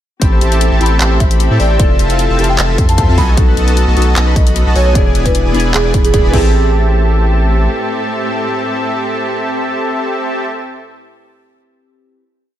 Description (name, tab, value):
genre	future bass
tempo	152 BPM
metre	4/4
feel	swing 53% on 16ths, half-time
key	A minor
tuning	A4 = 440 Hz
part	glassy digital keys	accompaniment	0.2-12.2 s	E3 to B5	-22 LUFS	left 3 dB	chorus, sidechain pumping, digital delay
part	muted studio string section	sustained chords	0.2-10.4 s	A2 to A4	-27 LUFS	left 1 dB	none
part	Celtic harp	arpeggios	0.2-8.7 s	F#4 to C6	-26 LUFS	left 6 dB	sidechain pumping, digital delay
part	soft supersaw	riff	0.2-10.5 s	B3 to C6	-18 LUFS	equal	sidechain pumping, digital delay
part	saturated sub bass	bass	0.2-7.7 s	E1 to A2	-13 LUFS	equal	sidechain pumping
part	electronic kick drum	drums	0.2-6.4 s	none	-12 LUFS	equal	overdrive
part	trap drum kit	drums	0.2-6.4 s	crash cymbal, handclaps, hi-hat	-20 LUFS	left 1 dB	none
part	folk marimba with soft mallets	melody	1.2-6.5 s	G#4 to B5	-19 LUFS	right 3 dB	sidechain pumping, digital delay
room	digital ambience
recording	none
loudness	-10 LUFS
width	side -12 dB against mid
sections	0.2-6.5 drop; 6.5-9.7 final hit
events	drop 0.2-6.5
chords	0.2 Am7; 1.8 Fmaj7; 3.2 B7; 5.0 E7; 6.3 Am7